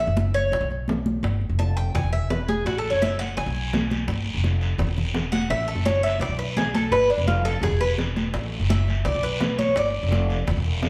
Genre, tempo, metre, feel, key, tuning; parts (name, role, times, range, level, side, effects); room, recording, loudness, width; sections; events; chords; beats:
latin, Cuban son and guajira; 169 BPM; 4/4; straight; A4 = 440 Hz
Cuban tres; arpeggios; 0.0-10.3 s; D4 to A5; -27 LUFS; equal
upright bass; bass; 0.0-10.9 s; E1 to B1; -27 LUFS; equal
bongos; percussion; 0.2-10.9 s; -35 LUFS; equal
congas; percussion; 0.2-10.9 s; -32 LUFS; equal
guiro; percussion; 2.7-10.9 s; -36 LUFS; equal
wet large studio reverb, RT60 1.3 s; band playing live in one room; -24 LUFS; mono
0.0-10.9 A section
Cuban tres solo 0.0-10.9
0.0 N.C.; 0.5 Bsus2; 1.2 Fadd9; 1.9 E; 2.7 F#m7; 3.4 G#m/B; 4.1 Fsus2; 4.8 Esus2; 5.5 F#m7; 6.2 Bm7; 6.9 F69; 7.6 E; 8.3 A5; 9.1 Bmadd9; 9.8 G5
0.17 0.53 0.88 | 1.24 1.59 1.95 2.31 | 2.66 3.02 3.37 3.73 | 4.08 4.44 4.79 5.15 | 5.50 5.86 6.22 6.57 | 6.93 7.28 7.64 7.99 | 8.35 8.70 9.06 9.41 | 9.77 10.12 10.48 10.84